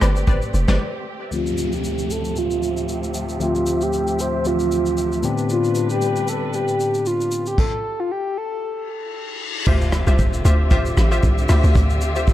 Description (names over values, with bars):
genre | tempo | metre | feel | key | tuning
amapiano | 115 BPM | 4/4 | swing 55% on 16ths | D minor | A4 = 440 Hz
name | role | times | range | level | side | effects
warm studio string section | sustained chords | 0.0-12.3 s | D2 to E5 | -29 LUFS | equal | low-pass filter
glassy wavetable pluck | stabs | 0.0-0.8, 9.7-12.2 s | F4 to E5 | -26 LUFS | left 2 dB | chorus, tape echo
hollow log drum bass | bass | 0.0-0.8, 9.7-12.3 s | F1 to D2 | -17 LUFS | equal | none
vintage brush drum kit | drums | 0.0-12.3 s | crash cymbal, hi-hat, kick drum, rim click, shaker, snare drum | -22 LUFS | equal | none
breathy flute-like synth lead | melody | 1.3-8.9 s | F4 to C5 | -23 LUFS | equal | chorus, phaser, low-pass filter, tape echo
bell-like tine electric piano | accompaniment | 1.3-7.6 s | D2 to E5 | -24 LUFS | left 3 dB | low-pass filter
downlifter, reverse cymbal and impact | sound effects | 1.3-11.8 s | none | -31 LUFS | equal | none
room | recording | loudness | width
light reverb | dark, warm production | -18 LUFS | side -13 dB against mid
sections
0.0-1.3 A section; 1.3-9.7 B section; 9.7-12.3 A section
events
drop 0.0-1.3, 9.7-12.3; break 0.8-1.3; filter sweep 1.3-9.7; stop 7.6-9.7; reverse cymbal 8.9-9.7; impact 9.7-11.8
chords
0.0 Am11; 1.3 Dm11; 5.2 Am11; 9.7 Dm11